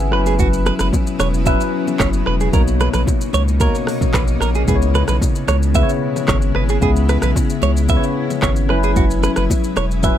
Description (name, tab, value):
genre	afrobeats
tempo	112 BPM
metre	4/4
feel	straight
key	C# dorian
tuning	A4 = 441 Hz
part	tine electric piano	accompaniment	0.0-10.2 s	B2 to G#5	-21 LUFS	left 4 dB	lush chorus
part	granular cloud pad	sustained chords	0.0-10.2 s	B2 to E4	-26 LUFS	equal	built-in reverb
part	saturated sub bass	bass	0.0-10.1 s	E1 to C#2	-18 LUFS	equal	none
part	direct-recorded clean electric guitar	riff	0.1-10.2 s	F#4 to E5	-22 LUFS	right 7 dB	ping-pong delay
part	afro-pop drum kit	drums	0.1-10.2 s	handclaps, hi-hat, kick drum, rim click, shaker	-19 LUFS	equal	none
part	bongos and congas	percussion	0.3-10.2 s	none	-28 LUFS	right 1 dB	none
room	light reverb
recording	none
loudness	-14 LUFS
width	side -11 dB against mid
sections	0.0-10.2 A section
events	none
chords	0.1 F#7sus4; 2.5 Bmaj9; 4.7 C#m7; 8.7 F#7sus4